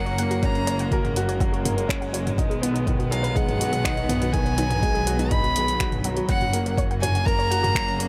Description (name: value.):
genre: piano and strings electronica.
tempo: 123 BPM.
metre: 4/4.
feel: straight.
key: F# major.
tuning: A4 = 442 Hz.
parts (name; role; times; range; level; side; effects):
dark violin; melody; 0.0-8.1 s; E#5 to B5; -29 LUFS; equal; none.
warm string quartet; sustained chords; 0.0-8.1 s; C#3 to B3; -36 LUFS; equal; sidechain pumping.
warm upright piano; riff; 0.0-8.1 s; D#3 to C#5; -30 LUFS; equal; delay.
clear symphonic double bass section; bass; 0.0-8.1 s; F#1 to B1; -29 LUFS; equal; sidechain pumping.
warbly dusty pluck; arpeggios; 0.1-8.0 s; D#4 to F#5; -37 LUFS; equal; none.
deep house drum kit; drums; 0.1-8.1 s; finger snaps, hi-hat, toms; -32 LUFS; equal; overdrive.
electronic kick drum; drums; 0.4-7.8 s; none; -28 LUFS; equal; overdrive.
room: studio ambience.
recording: none.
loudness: -23 LUFS.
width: mono.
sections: 0.0-8.1 A section.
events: none.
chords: 0.0 F#; 2.4 B6; 6.3 F#.